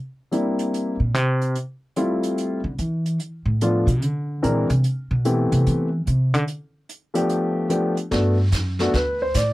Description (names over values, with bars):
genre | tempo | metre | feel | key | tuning
jazz piano trio | 146 BPM | 4/4 | swing 65% on 8ths | unclear | A4 = 437 Hz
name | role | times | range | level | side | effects
warm grand piano | melody | 0.3-9.5 s | E3 to D5 | -21 LUFS | left 1 dB | none
vintage brush drum kit | drums | 0.3-9.5 s | brushed snare drum, hi-hat, kick drum, snare drum | -32 LUFS | right 1 dB | none
upright bass | bass | 1.0-9.5 s | D2 to E3 | -21 LUFS | equal | none
room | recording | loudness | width
little or no reverb | dry, close 1970s-style studio recording | -20 LUFS | side -18 dB against mid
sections
0.0-8.1 A section; 8.1-9.5 B section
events
upright bass solo 0.0-8.1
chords
0.0 C7; 1.6 Fmaj9; 3.2 Bm7b5; 4.0 Eaug7; 4.8 Am9; 6.5 G9; 8.1 Gmaj9